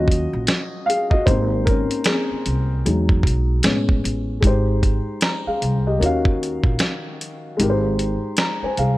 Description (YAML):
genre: lo-fi hip hop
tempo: 76 BPM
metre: 4/4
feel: swing 61% on 16ths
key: Ab major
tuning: A4 = 440 Hz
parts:
  - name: dark upright piano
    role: accompaniment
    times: 0.0-9.0 s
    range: Eb3 to Bb5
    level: -22 LUFS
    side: left 1 dB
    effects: cassette tape
  - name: upright bass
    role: bass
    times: 0.0-9.0 s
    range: Ab1 to A2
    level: -22 LUFS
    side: equal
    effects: none
  - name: dusty soul sampler-style drum kit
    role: drums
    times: 0.1-9.0 s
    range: hi-hat, kick drum, snare drum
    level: -20 LUFS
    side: equal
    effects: none
room: light reverb, small room ambience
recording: none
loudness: -17 LUFS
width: side -17 dB against mid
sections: 0.0-4.4 A section; 4.4-9.0 B section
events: upright piano solo 0.0-4.4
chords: 0.0 Ebm9; 1.3 Abmaj7; 2.9 Emaj9; 3.6 Amaj7; 4.4 Abmaj7; 6.0 Ebm9; 7.6 Abmaj7